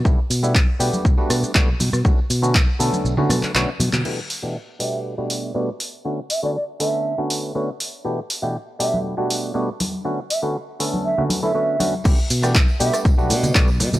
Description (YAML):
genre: filtered disco house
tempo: 120 BPM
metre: 4/4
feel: straight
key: B minor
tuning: A4 = 439 Hz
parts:
  - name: clav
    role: accompaniment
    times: 0.0-13.7 s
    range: B2 to A4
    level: -24 LUFS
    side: equal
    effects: phaser, vintage 12-bit sampler grit, sidechain pumping, low-pass filter
  - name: tambourine and congas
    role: percussion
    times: 0.0-4.0, 8.1-14.0 s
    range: none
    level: -27 LUFS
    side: equal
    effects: sidechain pumping on perc, low-pass filter on perc
  - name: fingered electric bass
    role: bass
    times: 0.1-4.0, 12.1-14.0 s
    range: B1 to B2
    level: -22 LUFS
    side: equal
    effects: sidechain pumping, low-pass filter
  - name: electronic kick drum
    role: drums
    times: 0.1-2.7, 12.1-13.7 s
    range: none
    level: -17 LUFS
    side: equal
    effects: none
  - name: punchy analog drum machine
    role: drums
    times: 0.1-14.0 s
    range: crash cymbal, handclaps, hi-hat, rim click, shaker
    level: -23 LUFS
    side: equal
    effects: sidechain pumping on perc, sidechain pumping on hats, sidechain pumping on cymbals
  - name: mellow hollow concert flute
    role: melody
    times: 4.8-13.0 s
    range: D5 to E5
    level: -25 LUFS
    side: right 2 dB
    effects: sidechain pumping, low-pass filter
room: little or no reverb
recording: dry, gritty hardware recording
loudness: -18 LUFS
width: side -16 dB against mid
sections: 0.0-4.1 A section; 4.1-12.1 B section; 12.1-14.0 C section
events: kick drops out 3.1-4.1; drum fill 3.6-4.1; band accent 3.9; filter sweep 4.1-12.1; drop 12.1-14.0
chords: 0.1 A7sus4/B; 0.8 Gmaj9/B; 1.8 Bm9; 4.1 A7sus4/B; 4.8 Gmaj9/B; 5.8 Bm9; 8.1 A7sus4/B; 8.8 Gmaj9/B; 9.8 Bm9; 12.1 A7sus4/B; 12.8 Gmaj9/B